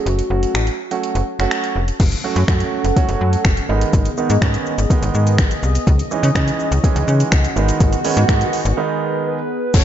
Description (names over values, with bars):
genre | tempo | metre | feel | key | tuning
dance-pop | 124 BPM | 4/4 | straight | F# dorian | A4 = 439 Hz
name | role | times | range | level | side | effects
hollow clarinet-like synth lead | melody | 0.0-1.0, 9.3-9.8 s | F#4 to C#5 | -24 LUFS | left 2 dB | chorus, digital delay
warm grand piano | accompaniment | 0.0-9.8 s | D#3 to A4 | -22 LUFS | right 6 dB | sidechain pumping
slap-like FM bass | bass | 0.1-9.8 s | E#1 to C#3 | -17 LUFS | left 1 dB | sidechain pumping
smooth R&B drum kit | drums | 0.1-9.8 s | crash cymbal, finger snaps, hi-hat, kick drum, shaker | -18 LUFS | equal | none
sweeping resonant pad | sustained chords | 2.0-9.8 s | E3 to F#5 | -25 LUFS | left 1 dB | lush chorus, sidechain pumping
swell and downlifter | sound effects | 7.1-9.8 s | none | -26 LUFS | right 1 dB | none
room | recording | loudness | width
light reverb, digital ambience | dark, warm production, nothing above 7.7 kHz | -15 LUFS | side -10 dB against mid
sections
0.0-2.0 A section; 2.0-9.7 B section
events
swell 7.1-9.7; break 8.8-9.7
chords
0.0 F#m; 3.7 G#m; 5.9 C#madd9; 7.6 G#m